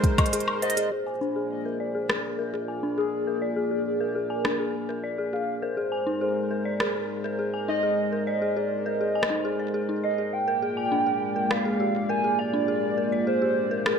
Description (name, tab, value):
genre	IDM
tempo	102 BPM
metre	4/4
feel	straight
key	unclear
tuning	A4 = 439 Hz
part	warbly nostalgic lead	melody	0.0-14.0 s	Ab4 to Ab5	-28 LUFS	right 2 dB	wide subtle chorus, ping-pong delay
part	warm analog pad	sustained chords	0.0-14.0 s	Ab3 to D5	-31 LUFS	equal	chorus
part	dark detuned synth bell	arpeggios	0.0-14.0 s	D4 to Ab5	-29 LUFS	left 2 dB	chorus, low-pass filter, digital delay
part	organic electronic drum kit	drums	0.0-14.0 s	hi-hat, rim click, woodblock	-28 LUFS	equal	none
room	light reverb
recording	none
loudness	-24 LUFS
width	side -6 dB against mid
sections	0.9-14.0 A section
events	filter sweep on synth bell 0.9-14.0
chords	0.0 Abadd9; 0.9 Bb7; 5.6 Abadd9; 10.3 Bb7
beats	0.33 | 0.92 1.51 2.10 2.68 | 3.27 3.86 4.45 5.04 | 5.62 6.21 6.80 7.39 | 7.98 8.56 9.15 9.74 | 10.33 10.92 11.51 12.10 | 12.68 13.27 13.86